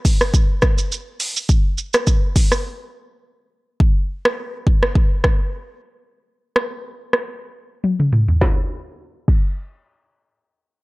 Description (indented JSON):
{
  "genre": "afrobeats",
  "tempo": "104 BPM",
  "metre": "4/4",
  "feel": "swing 55% on 16ths",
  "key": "none",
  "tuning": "none",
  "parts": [
    { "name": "afro-pop drum kit", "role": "drums", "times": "0.1-9.5 s", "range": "crash cymbal, hi-hat, kick drum, rim click, shaker, snare drum, toms", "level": "-16 LUFS", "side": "equal", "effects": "none" }
  ],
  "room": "digital ambience",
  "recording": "dry, gritty hardware recording, low-pass filter",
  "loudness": "-16 LUFS",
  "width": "side -23 dB against mid",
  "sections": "0.0-3.8 A section; 3.8-8.4 B section; 8.4-10.7 C section",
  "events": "break 2.6-3.8; filter sweep 3.8-8.4; drum fill 7.8-8.4",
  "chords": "none"
}